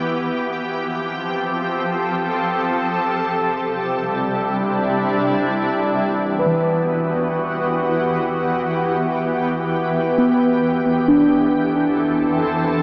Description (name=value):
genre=ambient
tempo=free time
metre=none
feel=none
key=E minor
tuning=A4 = 439 Hz
part: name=shimmering ambient pad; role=sustained chords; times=0.0-12.8 s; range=C3 to A4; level=-18 LUFS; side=equal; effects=chorus, built-in reverb
part: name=deep rumbling drone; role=bass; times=6.3-12.8 s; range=E2 to F2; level=-48 LUFS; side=equal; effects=none
part: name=muted felt-like synth keys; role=arpeggios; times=6.4-12.8 s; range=E3 to B4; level=-18 LUFS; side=equal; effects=chorus, tape echo
room=wet plate reverb, RT60 2.4 s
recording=echo-heavy mix, small speaker sound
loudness=-17 LUFS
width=side -36 dB against mid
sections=0.0-5.7 A section; 5.7-12.8 A section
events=none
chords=0.3 Fadd9; 3.0 Cadd9; 5.7 Em9; 11.1 Fmaj9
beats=free time